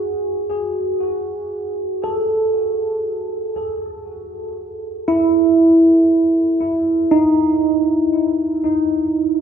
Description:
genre	ambient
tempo	free time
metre	none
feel	none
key	unclear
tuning	A4 = 439 Hz
part	tine electric piano	solo	0.0-9.4 s	D#4 to A4	-16 LUFS	right 1 dB	analog chorus, tape echo
room	wet spring reverb, RT60 2.5 s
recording	echo-heavy mix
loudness	-15 LUFS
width	side -8 dB against mid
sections	0.0-9.4 A section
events	none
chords	0.0 A5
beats	free time

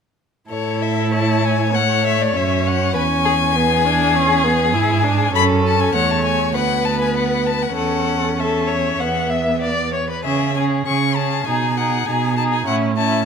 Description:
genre	quick classical-period movement for string quartet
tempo	99 BPM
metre	4/4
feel	rubato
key	A major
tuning	A4 = 440 Hz
part	rich violin	melody	0.5-13.2 s	C#5 to C#6	-22 LUFS	left 9 dB	none
part	rich violin	second line	0.5-13.2 s	E4 to F#5	-22 LUFS	left 4 dB	none
part	rich viola	accompaniment	0.5-13.2 s	A3 to E4	-22 LUFS	right 2 dB	none
part	rich cello	bass	0.5-13.2 s	D2 to C#3	-21 LUFS	right 5 dB	none
room	moderate scoring stage reverb, RT60 2.0 s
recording	none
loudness	-16 LUFS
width	side -6 dB against mid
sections	0.5-13.2 A section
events	none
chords	0.5 A; 2.9 E7; 5.3 F#m; 6.5 Bm/D; 7.8 A/E; 9.0 E5; 10.3 C#5; 11.5 G#m/B; 12.7 A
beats	| 0.50 1.12 1.74 2.34 | 2.95 3.55 4.15 4.74 | 5.34 5.94 6.54 7.14 | 7.75 8.37 9.00 9.63 | 10.25 10.87 11.48 12.07 | 12.67

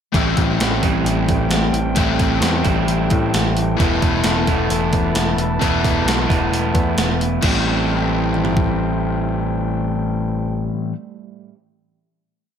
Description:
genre	rock, shoegaze and dream pop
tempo	132 BPM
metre	4/4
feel	straight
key	A minor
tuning	A4 = 442 Hz
part	mellow brass ensemble	sustained chords	0.1-10.7 s	E4 to A5	-27 LUFS	right 1 dB	none
part	electric guitar at the edge of break-up	riff	0.1-11.0 s	E2 to E4	-23 LUFS	right 11 dB	reverse reverb
part	overdriven semi-hollow guitar	riff	0.1-11.0 s	A2 to E4	-21 LUFS	left 10 dB	lush chorus
part	picked electric bass	bass	0.1-10.7 s	E1 to A2	-23 LUFS	equal	none
part	gated 80s digital drum machine	drums	0.1-8.7 s	crash cymbal, hi-hat, kick drum, snare drum, toms	-21 LUFS	equal	gated reverb, gated reverb snare, overdrive
room	light reverb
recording	none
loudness	-16 LUFS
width	side -8 dB against mid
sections	0.1-7.4 verse; 7.4-11.1 final chord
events	none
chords	0.1 Am7; 3.8 Esus4; 7.4 Am7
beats	| 0.13 0.59 1.05 1.50 | 1.96 2.42 2.87 3.33 | 3.78 4.24 4.69 5.15 | 5.60 6.06 6.51 6.96 | 7.42 7.88 8.33 8.79 | 9.24 9.70 10.15 10.61

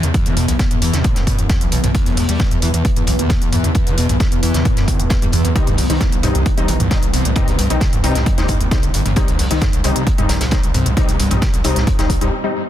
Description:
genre	driving peak-time techno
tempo	133 BPM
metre	4/4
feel	straight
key	unclear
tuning	A4 = 438 Hz
part	screaming distorted acid line	riff	0.0-12.3 s	A#1 to G3	-22 LUFS	equal	distortion, lush chorus, sidechain pumping, ping-pong delay
part	gritty driven synth bass	bass	0.0-12.3 s	G1 to F#2	-19 LUFS	equal	sidechain pumping
part	deep dark ambient pad	drone	0.3-12.3 s	E3 to B3	-25 LUFS	left 1 dB	chorus, built-in reverb, sidechain pumping
part	techno drum kit	drums	0.0-12.3 s	hi-hat, toms	-23 LUFS	right 1 dB	overdrive, sidechain pumping on hats, sidechain pumping on cymbals, sidechain pumping on toms
part	electronic kick drum	drums	0.1-12.2 s	none	-17 LUFS	equal	overdrive
part	warm soul drum kit	drums	0.1-12.2 s	hi-hat, snare drum	-30 LUFS	equal	sidechain pumping on hats, high-pass filter on hats, high-pass filter on snare, high-pass filter on room
part	rave stab	stabs	5.6-12.5 s	G3 to Eb4	-22 LUFS	left 3 dB	chorus, built-in reverb, sidechain pumping, ping-pong delay
room	light reverb, digital ambience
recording	dense, heavily limited modern master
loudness	-14 LUFS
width	side -12 dB against mid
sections	0.0-12.7 A section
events	break 12.3-12.7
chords	0.0 E5; 5.6 Cm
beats	| 0.14 0.59 1.04 1.50 | 1.95 2.40 2.85 3.30 | 3.75 4.20 4.65 5.11 | 5.56 6.01 6.46 6.91 | 7.36 7.81 8.26 8.71 | 9.16 9.62 10.07 10.52 | 10.97 11.42 11.87 12.32

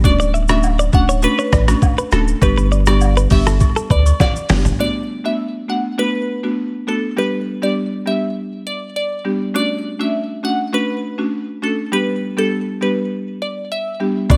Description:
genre	afrobeats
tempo	101 BPM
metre	4/4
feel	straight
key	unclear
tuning	A4 = 440 Hz
part	buzzing marimba with medium hard mallets	accompaniment	0.0-14.4 s	G3 to G4	-23 LUFS	equal	none
part	punchy sub bass	bass	0.0-4.7, 14.3-14.4 s	D1 to D2	-18 LUFS	equal	none
part	trip hop sampler-style drum kit	drums	0.0-4.8, 14.3-14.4 s	hi-hat, kick drum, rim click, shaker, snare drum, toms	-19 LUFS	equal	none
part	agogo bells and woodblock	percussion	0.0-4.3, 14.3-14.4 s	none	-30 LUFS	equal	none
part	glassy wavetable pluck	melody	0.1-14.4 s	A4 to F#5	-25 LUFS	equal	chorus, delay
part	direct-recorded clean electric guitar	riff	0.2-4.6 s	G4 to E5	-26 LUFS	equal	delay
room	little or no reverb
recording	none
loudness	-18 LUFS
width	mono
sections	0.0-4.8 A section; 4.8-14.3 B section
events	drum fill 4.2-4.8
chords	0.0 Dmaj7; 2.4 G; 4.8 Bm7; 7.2 G; 9.5 Dmaj7; 11.9 G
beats	| 0.04 0.64 1.23 1.82 | 2.42 3.01 3.61 4.20 | 4.79 5.39 5.98 6.58 | 7.17 7.76 8.36 8.95 | 9.55 10.14 10.73 11.33 | 11.92 12.52 13.11 13.71 | 14.30

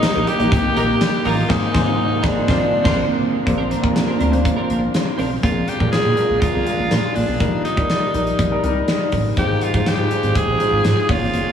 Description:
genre	1980s-style pop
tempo	122 BPM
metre	4/4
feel	straight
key	Bb mixolydian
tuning	A4 = 440 Hz
part	raspy alto saxophone	melody	0.0-11.5 s	D4 to Ab4	-22 LUFS	right 1 dB	diffuse ambient delay
part	warm baby grand piano	accompaniment	0.0-11.5 s	Ab2 to Eb5	-22 LUFS	left 2 dB	wide subtle chorus
part	string machine, cellos	sustained chords	0.0-5.4 s	C3 to C4	-26 LUFS	right 2 dB	phaser, ensemble chorus
part	twelve-string electric guitar	riff	0.0-5.4 s	C4 to Bb4	-28 LUFS	right 3 dB	analog chorus, diffuse ambient delay
part	big rock drum kit	drums	0.0-11.4 s	crash cymbal, hi-hat, kick drum, snare drum, tambourine	-21 LUFS	equal	none
part	chorused synth bass	bass	0.2-11.4 s	Gb1 to Bb2	-22 LUFS	right 1 dB	none
part	warm horn section	stabs	0.8-3.0 s	Bb3 to C5	-32 LUFS	left 2 dB	none
room	wet cathedral reverb, RT60 5.1 s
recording	dreamy mix soaked in reverb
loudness	-16 LUFS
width	side -8 dB against mid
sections	0.0-3.5 A section; 3.5-5.4 B section; 5.4-11.5 C section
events	band accent 1.5-3.5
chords	0.0 Eb/Bb; 1.5 Abadd9; 2.5 Bbadd9; 5.4 Bb7; 7.4 Ebmaj7/Bb; 9.4 Ab6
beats	0.03 0.52 1.01 | 1.50 1.99 2.48 2.98 | 3.47 3.96 4.45 4.94 | 5.43 5.93 6.42 6.91 | 7.40 7.89 8.38 8.88 | 9.37 9.86 10.35 10.84 | 11.34

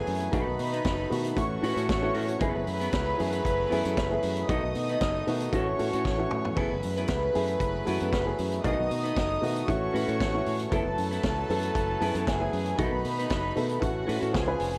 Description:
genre	disco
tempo	116 BPM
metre	4/4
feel	straight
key	F# dorian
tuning	A4 = 440 Hz
part	warm studio string section	second line	0.0-14.8 s	F#4 to D#6	-35 LUFS	equal	none
part	dark baby grand piano	accompaniment	0.0-14.8 s	D#3 to B4	-34 LUFS	equal	none
part	muted French horn section	sustained chords	0.0-14.7 s	C#3 to B4	-38 LUFS	equal	none
part	fingered electric bass	bass	0.1-14.8 s	E#1 to B2	-35 LUFS	equal	none
part	vintage drum kit	drums	0.1-14.8 s	hi-hat, kick drum, snare drum, splash cymbal, toms	-36 LUFS	equal	none
part	semi-hollow electric guitar	accompaniment	0.2-14.8 s	B3 to B4	-39 LUFS	equal	none
room	light reverb, studio reverb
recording	none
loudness	-28 LUFS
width	mono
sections	0.0-14.8 A section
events	drum fill 6.0-6.6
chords	0.3 B7; 1.4 A6; 2.4 F#m11; 4.5 B7; 5.5 A6; 6.6 F#m11; 8.6 B7; 9.7 A6; 10.7 F#m11; 12.8 B7; 13.8 A6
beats	| 0.33 0.85 1.37 1.89 | 2.41 2.93 3.45 3.97 | 4.49 5.01 5.53 6.05 | 6.57 7.09 7.61 8.12 | 8.64 9.16 9.68 10.20 | 10.72 11.24 11.76 12.27 | 12.79 13.31 13.83 14.35

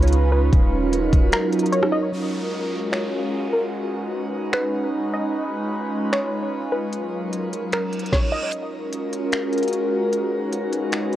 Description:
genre	hip hop, atmospheric cloud-rap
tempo	150 BPM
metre	4/4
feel	half-time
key	F# major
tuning	A4 = 440 Hz
part	warbly dusty pluck	melody	0.0-8.5 s	A#4 to D#5	-28 LUFS	equal	chorus, low-pass filter, digital delay
part	warbly tape-like pad	sustained chords	0.0-11.2 s	F#3 to B4	-23 LUFS	right 1 dB	chorus, built-in reverb, phaser, sidechain pumping, low-pass filter
part	soft 808-style bass	bass	0.0-1.3 s	D#1 to C#2	-20 LUFS	equal	none
part	smooth R&B drum kit	drums	0.0-11.2 s	finger snaps, hi-hat, kick drum, rim click, snare drum	-22 LUFS	equal	none
part	downlifter and reverse cymbal	sound effects	2.1-5.3, 7.9-8.5 s	none	-38 LUFS	right 2 dB	none
room	light reverb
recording	worn, warbling old tape, cassette tape, warbly pitch drift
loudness	-20 LUFS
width	side -13 dB against mid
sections	0.0-2.1 A section; 2.1-8.5 B section; 8.5-11.2 C section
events	break 1.3-2.1; filter sweep 2.1-8.5; reverse cymbal 7.9-8.5; kick muted 8.5-11.2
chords	0.0 C#9; 0.5 D#m9; 2.1 F#maj9; 3.7 B69; 5.3 C#9; 6.9 D#m9; 8.5 F#maj9; 10.1 B69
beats	0.13 | 0.53 0.93 1.33 1.73 | 2.13 2.53 2.93 3.33 | 3.73 4.13 4.53 4.93 | 5.33 5.73 6.13 6.53 | 6.93 7.33 7.73 8.13 | 8.53 8.93 9.33 9.73 | 10.13 10.53 10.93

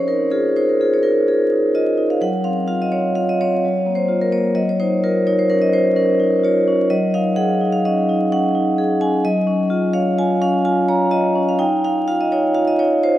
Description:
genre	classical, contemporary piece for solo vibraphone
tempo	127 BPM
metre	5/4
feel	rubato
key	unclear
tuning	A4 = 445 Hz
part	vibraphone with medium hard mallets	solo	0.0-13.2 s	Gb3 to Bb5	-15 LUFS	equal	none
room	wet cathedral reverb, RT60 6.3 s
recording	dark, warm production, vinyl crackle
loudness	-15 LUFS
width	side -13 dB against mid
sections	0.0-13.2 A section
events	none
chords	0.0 Dbadd9; 2.2 Ebm13/Gb; 3.6 Bb5/Gb; 4.6 Ebm9/Gb; 6.9 Gbsus2; 9.2 Dbadd9/Gb; 11.6 Ebsus2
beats	0.32 0.80 1.28 1.75 | 2.22 2.69 3.16 3.63 4.10 | 4.57 5.03 5.50 5.96 6.44 | 6.90 7.37 7.84 8.31 8.77 | 9.24 9.71 10.18 10.65 11.12 | 11.61 12.08 12.56 13.04

